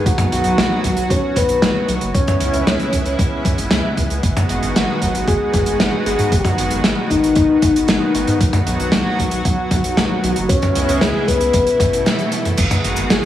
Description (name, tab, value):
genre	synthwave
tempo	115 BPM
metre	4/4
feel	straight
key	G# phrygian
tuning	A4 = 437 Hz
part	soft octave-layered synth lead	melody	0.0-13.3 s	D#4 to C#5	-19 LUFS	left 2 dB	chorus, digital delay
part	lush unison pad	sustained chords	0.0-13.3 s	B2 to F#4	-22 LUFS	equal	chorus, sidechain pumping
part	round analog bass	bass	0.0-13.2 s	F#1 to G#2	-22 LUFS	equal	none
part	electronic kick drum	drums	0.1-12.7 s	none	-20 LUFS	equal	none
part	warm soul drum kit	drums	0.1-13.2 s	cabasa, crash cymbal, hi-hat, snare drum, toms	-19 LUFS	equal	gated reverb
part	soft synth bell	second line	13.1-13.3 s	G#4	-27 LUFS	right 10 dB	none
room	light reverb, studio reverb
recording	small room ambience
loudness	-14 LUFS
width	side -12 dB against mid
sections	0.0-12.6 A section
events	break 12.1-12.6; band accent 12.1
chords	0.1 B; 2.1 C#m7; 4.2 G#m7; 8.4 B; 10.5 C#m7; 11.5 Asus2; 12.6 G#m7